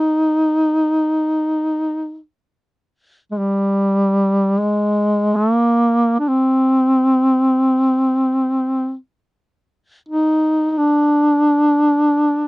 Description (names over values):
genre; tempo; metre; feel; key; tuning
caucasian folk, Caucasian lament; free time; none; none; C minor; A4 = 440 Hz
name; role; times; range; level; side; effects
mellow duduk; solo; 0.0-12.5 s; G3 to Eb4; -14 LUFS; equal; none
room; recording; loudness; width
light reverb; dry, close 1970s-style studio recording; -14 LUFS; side -22 dB against mid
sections
0.0-12.5 A section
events
none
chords
none